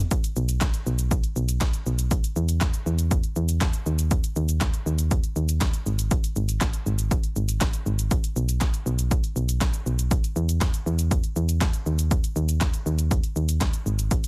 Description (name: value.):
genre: dance-pop.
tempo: 120 BPM.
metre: 4/4.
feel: straight.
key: unclear.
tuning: A4 = 440 Hz.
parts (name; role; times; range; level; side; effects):
solid FM bass; bass; 0.0-14.2 s; G#1 to E2; -27 LUFS; equal; sidechain pumping.
punchy analog drum machine; drums; 0.1-14.3 s; handclaps, hi-hat, kick drum, shaker, snare drum; -27 LUFS; equal; none.
room: little or no reverb.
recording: dense, heavily limited modern master.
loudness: -25 LUFS.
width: mono.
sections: 0.1-14.3 A section.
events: none.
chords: none.